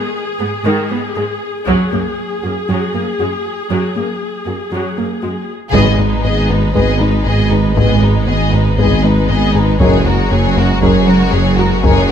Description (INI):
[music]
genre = cinematic, hybrid orchestral and electronic film score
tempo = 118 BPM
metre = 4/4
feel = straight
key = G# minor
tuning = A4 = 440 Hz
[part]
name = warm symphonic viola section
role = accompaniment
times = 0.0-12.1 s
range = D#3 to G#4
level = -21 LUFS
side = left 1 dB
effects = none
[part]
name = soft round pluck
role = arpeggios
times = 0.0-12.1 s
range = F#3 to G#4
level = -22 LUFS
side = right 2 dB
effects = chorus, ping-pong delay
[part]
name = dark symphonic cello section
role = bass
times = 0.4-12.1 s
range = F#2 to G#2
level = -19 LUFS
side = right 3 dB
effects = none
[part]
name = taiko ensemble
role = drums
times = 1.7-2.6, 5.7-12.1 s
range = none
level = -20 LUFS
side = left 1 dB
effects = none
[part]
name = warm symphonic violin section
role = melody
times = 5.7-12.1 s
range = A#4 to D#5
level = -21 LUFS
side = left 5 dB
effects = none
[part]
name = warm symphonic violin section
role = second line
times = 5.7-12.1 s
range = D#4 to G#4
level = -20 LUFS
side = left 3 dB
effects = none
[part]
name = dark French horn section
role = sustained chords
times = 5.7-12.0 s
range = G#3 to B4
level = -22 LUFS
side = left 4 dB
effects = none
[part]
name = rubbery square bass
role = riff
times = 5.7-12.1 s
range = F#2 to G#3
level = -18 LUFS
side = left 3 dB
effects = none
[part]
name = mellow tuba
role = bass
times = 5.7-12.1 s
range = F#1 to G#1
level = -19 LUFS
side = right 4 dB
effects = none
[part]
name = pure sine sub bass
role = bass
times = 5.7-12.1 s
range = F#1 to G#1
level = -20 LUFS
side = left 1 dB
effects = none
[part]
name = rich symphonic double bass section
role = bass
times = 5.7-12.1 s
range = F#1 to G#1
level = -21 LUFS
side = right 4 dB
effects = none
[sound]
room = moderate scoring stage reverb, RT60 2.0 s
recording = none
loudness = -12 LUFS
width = side -8 dB against mid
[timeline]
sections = 0.0-5.7 A section; 5.7-12.1 B section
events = band accent 5.7-6.2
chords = 0.0 G#m; 1.7 F#add9; 5.7 G#m; 9.8 F#add9